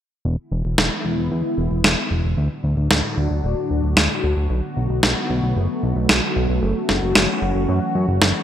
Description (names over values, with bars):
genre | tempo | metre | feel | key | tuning
synthwave | 113 BPM | 4/4 | straight | unclear | A4 = 442 Hz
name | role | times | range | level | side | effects
phased analog pad | sustained chords | 0.7-8.4 s | A2 to F#4 | -24 LUFS | equal | phaser, chorus, shimmer reverb
fat analog bass | bass | 0.2-8.3 s | D1 to F#2 | -20 LUFS | equal | tube saturation
electronic snare drum | drums | 0.8-8.3 s | none | -18 LUFS | equal | gated reverb
room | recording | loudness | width
moderate plate reverb, RT60 2.2 s | bright 1980s-style digital production | -17 LUFS | side -10 dB against mid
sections
0.3-8.4 A section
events
filter sweep on analog synth bass 0.3-8.4; filter sweep on analog synth pad 0.3-8.4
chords
0.3 E7; 2.4 D; 4.5 Bm7; 6.6 F#m7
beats
| 0.25 0.78 1.31 1.84 | 2.38 2.91 3.44 3.97 | 4.50 5.03 5.56 6.09 | 6.62 7.16 7.69 8.22